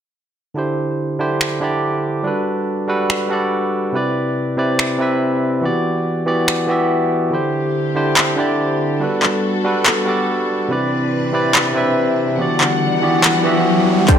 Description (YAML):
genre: future bass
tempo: 142 BPM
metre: 4/4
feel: half-time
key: G major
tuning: A4 = 440 Hz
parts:
  - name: barky tine electric piano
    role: accompaniment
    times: 0.5-14.2 s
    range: C3 to E5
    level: -17 LUFS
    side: right 1 dB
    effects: vintage 12-bit sampler grit, sidechain pumping, dub echo
  - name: dubstep drum kit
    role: drums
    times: 1.4-14.2 s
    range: finger snaps, handclaps, hi-hat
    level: -16 LUFS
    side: equal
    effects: none
  - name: warm studio string section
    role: sustained chords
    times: 7.3-14.2 s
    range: D3 to F#5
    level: -22 LUFS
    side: left 3 dB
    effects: sidechain pumping, low-pass filter
  - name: riser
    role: sound effects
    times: 11.8-14.2 s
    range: none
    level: -21 LUFS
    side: left 1 dB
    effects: none
  - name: supersaw stab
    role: riff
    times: 14.1-14.2 s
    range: D4 to G5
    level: -15 LUFS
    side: equal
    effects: sidechain pumping, low-pass filter
  - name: warm 808-style bass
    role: bass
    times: 14.1-14.2 s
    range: none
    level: barely audible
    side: none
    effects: none
  - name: electronic kick drum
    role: drums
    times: 14.1-14.2 s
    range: none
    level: -10 LUFS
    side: equal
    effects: none
room: moderate digital room reverb, RT60 0.9 s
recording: none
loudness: -15 LUFS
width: side -8 dB against mid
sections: 0.6-14.1 A section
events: riser 11.8-14.1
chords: 0.6 D7sus4; 2.3 Gmaj9; 3.9 Cmaj9; 5.6 Em9; 7.3 D7sus4; 9.0 Gmaj9; 10.7 Cmaj9; 12.4 Em9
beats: | 0.56 0.99 1.41 1.83 | 2.25 2.68 3.10 3.52 | 3.94 4.37 4.79 5.21 | 5.63 6.06 6.48 6.90 | 7.33 7.75 8.17 8.59 | 9.02 9.44 9.86 10.28 | 10.71 11.13 11.55 11.97 | 12.40 12.82 13.24 13.66 | 14.09